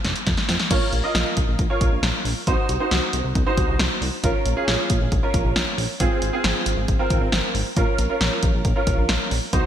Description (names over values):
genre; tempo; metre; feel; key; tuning
synth-pop; 136 BPM; 4/4; straight; Bb minor; A4 = 438 Hz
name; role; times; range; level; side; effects
chorused synth bass; bass; 0.0-9.6 s; F1 to F2; -24 LUFS; equal; none
punchy analog drum machine; drums; 0.0-9.6 s; crash cymbal, hi-hat, kick drum, snare drum; -22 LUFS; equal; gated reverb
clear grand piano; accompaniment; 0.7-9.7 s; C4 to Eb5; -24 LUFS; right 2 dB; ensemble chorus
room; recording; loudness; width
moderate lush hall reverb, RT60 2.0 s; bright 1980s-style digital production; -19 LUFS; side -10 dB against mid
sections
0.7-9.7 A section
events
drum fill 0.0-0.7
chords
0.0 N.C.; 0.7 Bbm; 2.5 Cdim; 4.2 Bbm; 6.0 Fm/Ab; 7.8 Bbm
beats
0.27 | 0.71 1.15 1.59 2.03 | 2.47 2.91 3.35 3.79 | 4.24 4.68 5.12 5.56 | 6.00 6.44 6.88 7.33 | 7.77 8.21 8.65 9.09 | 9.53